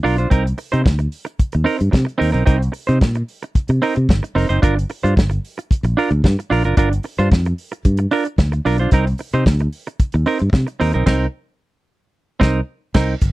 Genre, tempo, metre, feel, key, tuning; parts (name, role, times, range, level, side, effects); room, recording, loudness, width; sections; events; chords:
disco; 112 BPM; 4/4; straight; A4 = 440 Hz
semi-hollow electric guitar; accompaniment; 0.0-13.1 s; C4 to C5; -19 LUFS; right 3 dB
fingered electric bass; bass; 0.0-13.3 s; F1 to C3; -17 LUFS; equal
warm soul drum kit; drums; 0.1-13.3 s; crash cymbal, hi-hat, kick drum, snare drum; -15 LUFS; equal
little or no reverb; dry, close 1970s-style studio recording; -15 LUFS; side -18 dB against mid
0.0-13.2 A section
band accent 11.1-13.2
0.3 Cm7; 4.6 Gm7; 8.9 Cm7